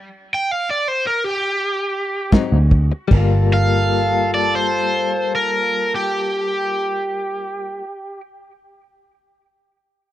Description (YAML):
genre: straight-eighth soul blues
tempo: 75-88 BPM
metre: 4/4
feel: straight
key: G minor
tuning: A4 = 440 Hz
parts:
  - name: cranked stack guitar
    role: melody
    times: 0.3-8.2 s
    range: G4 to G5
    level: -20 LUFS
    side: right 1 dB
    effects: overdrive
  - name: mellow horn section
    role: sustained chords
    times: 2.3-7.1 s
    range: Ab3 to A5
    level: -26 LUFS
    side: equal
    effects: none
  - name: direct-recorded clean electric guitar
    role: stabs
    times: 2.3-7.9 s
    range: Ab2 to F4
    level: -24 LUFS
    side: left 8 dB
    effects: tremolo
  - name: vintage muted picked electric bass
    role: bass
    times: 2.3-7.8 s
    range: G1 to D2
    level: -17 LUFS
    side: equal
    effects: none
  - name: warm soul drum kit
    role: drums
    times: 2.3-3.3 s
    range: crash cymbal, hi-hat, kick drum, snare drum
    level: -15 LUFS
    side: right 1 dB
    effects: none
room: light reverb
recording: dry, close 1970s-style studio recording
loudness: -16 LUFS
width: side -13 dB against mid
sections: 0.0-3.1 A section; 3.1-6.3 B section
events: slowing down 0.0-3.1; stop 0.0-2.3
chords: 0.0 N.C.; 2.3 Ab7; 3.1 Gm9